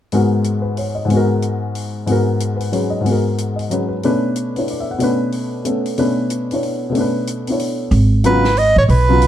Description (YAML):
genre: modal jazz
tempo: 185 BPM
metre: 3/4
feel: swing 62% on 8ths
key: unclear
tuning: A4 = 441 Hz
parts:
  - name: warm upright piano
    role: accompaniment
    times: 0.1-9.2 s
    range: G#2 to F#5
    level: -17 LUFS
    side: left 1 dB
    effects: none
  - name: compact cocktail drum kit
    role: drums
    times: 0.1-9.3 s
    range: hi-hat, snare drum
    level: -32 LUFS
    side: equal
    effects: none
  - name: upright bass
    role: bass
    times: 7.9-9.3 s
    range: G#1 to B1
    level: -13 LUFS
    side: right 1 dB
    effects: none
  - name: clear soprano saxophone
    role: melody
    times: 8.3-9.3 s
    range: B4 to D#5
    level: -14 LUFS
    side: right 2 dB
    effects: none
room: light reverb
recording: dark, warm production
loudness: -15 LUFS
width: side -11 dB against mid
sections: 0.1-7.9 A section; 7.9-9.3 B section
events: none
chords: 0.1 G#m9; 4.0 Bm9; 7.9 G#m7